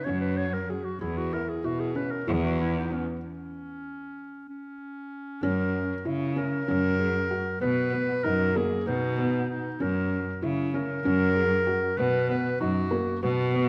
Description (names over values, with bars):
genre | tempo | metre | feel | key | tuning
contemporary instrumental, chamber music in an uneven meter | 192 BPM (eighths) | 7/8 | straight | unclear | A4 = 444 Hz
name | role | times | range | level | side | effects
mellow clarinet | melody | 0.0-13.7 s | C#4 to C#5 | -33 LUFS | equal | none
felt-muted upright piano | arpeggios | 0.1-13.7 s | A#3 to G#4 | -33 LUFS | equal | none
dark cello | bass | 0.1-13.7 s | E2 to C#3 | -31 LUFS | equal | none
room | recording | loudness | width
moderate concert hall reverb, RT60 2.0 s | none | -27 LUFS | mono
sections
0.0-5.4 A section; 5.4-13.7 B section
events
stop 3.2-5.4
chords
0.0 F#5; 1.0 E; 3.2 N.C.; 5.4 F#; 7.6 B; 9.8 F#; 12.0 B